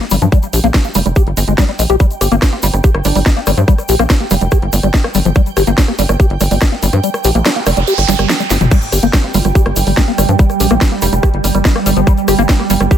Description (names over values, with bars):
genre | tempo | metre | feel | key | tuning
psychedelic trance | 143 BPM | 4/4 | straight | G minor | A4 = 441 Hz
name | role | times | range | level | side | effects
liquid acid bass | riff | 0.0-13.0 s | F3 to G4 | -16 LUFS | moving between left 8 dB and right 5 dB | phaser, auto-pan, sidechain pumping, ping-pong delay
garage drum kit | drums | 0.0-13.0 s | crash cymbal, hi-hat, rim click, snare drum, toms | -18 LUFS | equal | none
ethereal airy pad | texture | 0.0-13.0 s | G5 | -25 LUFS | right 7 dB | ensemble chorus, built-in reverb, phaser, sidechain pumping
tight sequencer bass | bass | 0.1-12.9 s | F1 to G2 | -14 LUFS | equal | none
egg shaker | percussion | 0.1-13.0 s | none | -26 LUFS | left 2 dB | none
electronic kick drum | drums | 0.3-13.0 s | none | -11 LUFS | equal | none
resonant blip pluck | second line | 2.4-3.5, 9.1-9.9 s | C4 to F4 | -28 LUFS | right 4 dB | none
noise sweep | sound effects | 7.3-8.7 s | none | -21 LUFS | right 6 dB | none
pulsing gated texture | sustained chords | 8.7-13.0 s | G3 | -18 LUFS | right 7 dB | chorus, built-in reverb, sidechain pumping
room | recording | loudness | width
digital ambience | none | -10 LUFS | side -10 dB against mid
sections
0.0-13.0 A section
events
fade-in on ambient pad 0.0-13.0; kick drops out 7.0-8.7; noise sweep 7.3-8.7; drum fill 8.5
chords
0.0 G5